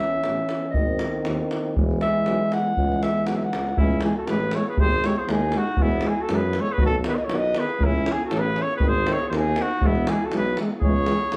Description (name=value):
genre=balkan folk, Balkan brass band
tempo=119 BPM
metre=2/4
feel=swing 55% on 16ths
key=C# minor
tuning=A4 = 439 Hz
part: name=clear clarinet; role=second line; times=0.0-11.4 s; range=B3 to F#5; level=-31 LUFS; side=equal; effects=none
part: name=mellow trombone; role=accompaniment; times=0.0-11.4 s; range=G#3 to C#4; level=-31 LUFS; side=equal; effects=none
part: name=warm euphonium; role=accompaniment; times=0.0-11.4 s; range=B#2 to E3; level=-36 LUFS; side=equal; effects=none
part: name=clear tuba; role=bass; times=0.0-11.4 s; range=E1 to F#2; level=-30 LUFS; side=equal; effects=none
part: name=davul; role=percussion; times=0.2-11.4 s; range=none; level=-28 LUFS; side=equal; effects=none
part: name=mellow trumpet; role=melody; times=3.8-11.4 s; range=E4 to D#5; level=-28 LUFS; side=equal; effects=none
room=wet studio reverb, RT60 0.6 s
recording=heard from further back in the room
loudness=-23 LUFS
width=mono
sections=0.0-3.8 A section; 3.8-11.4 B section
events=clarinet solo 0.0-3.8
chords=0.0 C#m; 0.8 G#; 1.8 E; 2.8 C#m; 4.8 G#; 5.8 E; 6.8 B; 7.8 C#m; 8.8 G#; 9.8 E; 10.8 C#m